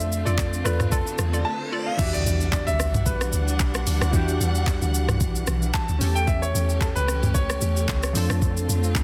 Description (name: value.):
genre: amapiano.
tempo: 112 BPM.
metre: 4/4.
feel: swing 55% on 16ths.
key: E dorian.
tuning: A4 = 440 Hz.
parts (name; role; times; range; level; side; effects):
clear grand piano; melody; 0.0-8.1 s; A4 to A5; -32 LUFS; equal; delay.
warm analog keys; accompaniment; 0.0-9.0 s; E3 to A4; -35 LUFS; equal; chorus.
warm studio string section; sustained chords; 0.0-9.0 s; D3 to F#5; -34 LUFS; equal; sidechain pumping.
hollow square pluck; stabs; 0.0-1.9 s; F4 to D5; -35 LUFS; equal; chorus, delay.
deep log drum bass; bass; 0.0-9.0 s; B1 to F2; -26 LUFS; equal; none.
smooth R&B drum kit; drums; 0.0-9.0 s; crash cymbal, handclaps, hi-hat, kick drum, rim click, shaker, toms; -28 LUFS; equal; none.
riser and impact; sound effects; 1.1-4.1 s; none; -36 LUFS; equal; none.
room: digital ambience.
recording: dense, heavily limited modern master.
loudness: -23 LUFS.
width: mono.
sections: 0.0-2.0 A section; 2.0-9.0 B section.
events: riser 1.1-2.0; drop 2.0-9.0; impact 2.0-4.1.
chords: 0.0 F6; 2.0 Em9; 6.0 A7; 8.2 F6.